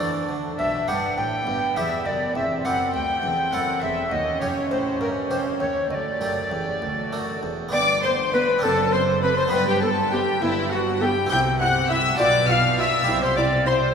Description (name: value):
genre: classical, baroque-style concerto movement with solo episodes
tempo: 68 BPM (dotted quarters)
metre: 6/8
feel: straight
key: G major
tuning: A4 = 441 Hz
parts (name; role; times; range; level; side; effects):
- mellow tenor recorder; melody; 0.0-13.9 s; E4 to G5; -24 LUFS; left 1 dB; none
- warm chamber violin section; melody; 0.0-13.7 s; F#4 to G6; -28 LUFS; left 4 dB; none
- warm chamber violin section; second line; 0.0-13.9 s; E4 to G5; -27 LUFS; left 2 dB; none
- dark chamber viola section; accompaniment; 0.0-13.7 s; A3 to F4; -30 LUFS; right 2 dB; none
- harpsichord; accompaniment; 0.0-13.9 s; D2 to A4; -30 LUFS; right 2 dB; none
- dark chamber cello section; bass; 0.0-13.9 s; D2 to E3; -31 LUFS; right 2 dB; none
- dark studio double bass section; bass; 0.0-13.9 s; E1 to E2; -32 LUFS; right 4 dB; none
room: wet cathedral reverb, RT60 6.5 s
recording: recorded in a church or concert hall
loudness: -20 LUFS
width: side -6 dB against mid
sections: 0.0-7.7 A section; 7.7-13.9 B section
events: none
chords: 0.0 D; 0.6 G; 2.4 C/E; 3.2 Am/E; 4.1 Eb7; 5.9 Dsus4; 6.8 D; 7.7 G; 8.6 D7/F#; 9.5 G; 11.3 C; 12.2 G7/B; 13.1 C